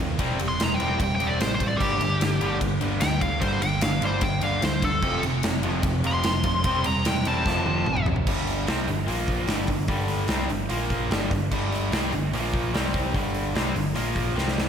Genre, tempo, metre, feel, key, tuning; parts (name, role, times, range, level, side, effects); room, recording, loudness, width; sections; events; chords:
hard rock; 148 BPM; 4/4; straight; G minor; A4 = 440 Hz
overdriven semi-hollow guitar; riff; 0.0-14.7 s; F2 to C4; -30 LUFS; left 8 dB; slapback echo
sludgy distorted guitar; riff; 0.0-8.3 s; G2 to G4; -34 LUFS; equal
tight distorted guitar; riff; 0.0-14.7 s; F2 to C4; -30 LUFS; right 8 dB; distortion
overdriven picked electric bass; bass; 0.0-14.7 s; E1 to Eb2; -29 LUFS; equal
big rock drum kit; drums; 0.2-14.7 s; crash cymbal, hi-hat, kick drum, ride cymbal, snare drum, toms; -27 LUFS; equal
nasal lead guitar with a parked wah; melody; 0.5-8.1 s; G4 to C6; -27 LUFS; equal; overdrive, slapback echo, tape echo
moderate lush hall reverb, RT60 1.5 s, small room reverb; big arena sound; -22 LUFS; side -8 dB against mid
0.0-8.3 A section; 8.3-14.7 B section
lead electric guitar solo 0.0-8.3; drum fill 7.5-8.3, 14.4-14.7
0.2 C/E; 1.8 Gm; 5.0 F; 6.7 C/E; 7.5 F; 8.3 G5; 9.1 Bb5; 9.5 G5; 10.7 Bb5; 11.1 G5; 12.3 Bb5; 12.7 C5; 13.1 G5; 14.0 Bb5